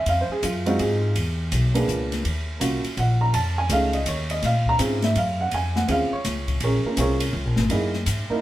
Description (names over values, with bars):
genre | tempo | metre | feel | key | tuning
jazz piano trio | 165 BPM | 3/4 | swing 64% on 8ths | Bb minor | A4 = 438 Hz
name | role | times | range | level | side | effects
warm upright piano | melody | 0.0-8.4 s | Ab3 to Bb5 | -24 LUFS | right 1 dB | none
upright bass | bass | 0.0-8.3 s | Ab1 to Bb2 | -24 LUFS | equal | none
open jazz drum kit | drums | 0.1-8.2 s | hi-hat, kick drum, ride cymbal, snare drum | -28 LUFS | left 1 dB | none
room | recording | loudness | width
light reverb | band playing live in one room | -20 LUFS | side -14 dB against mid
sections
0.0-6.6 A section; 6.6-8.4 B section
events
upright piano solo 6.6-8.4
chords
0.1 Fm7; 1.1 E7#11; 2.2 Ebm; 3.3 F7alt; 4.4 Bbm7; 7.7 Gb13